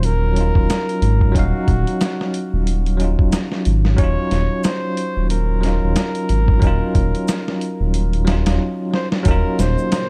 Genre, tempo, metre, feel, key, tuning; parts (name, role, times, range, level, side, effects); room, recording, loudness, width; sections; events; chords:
trip hop; 91 BPM; 4/4; swing 58% on 16ths; Eb dorian; A4 = 440 Hz
trumpet with bucket mute; melody; 0.0-10.1 s; Gb4 to Db5; -28 LUFS; equal; tape echo
bell-like tine electric piano; accompaniment; 0.0-10.1 s; Gb3 to F5; -25 LUFS; equal; tremolo, tape echo
dark detuned saw bass; bass; 0.0-9.8 s; Eb1 to Ab1; -20 LUFS; equal
dusty soul sampler-style drum kit; drums; 0.0-10.1 s; hi-hat, kick drum, snare drum; -22 LUFS; equal
maracas; percussion; 0.7-10.1 s; -40 LUFS; equal
deep dark ambient pad; sustained chords; 9.7-10.1 s; Bb3 to Eb5; -34 LUFS; equal; chorus, built-in reverb
little or no reverb; dark, warm production; -18 LUFS; mono
0.0-9.3 A section
break 8.6-9.3; drum fill 8.9-9.3
0.0 Ebm9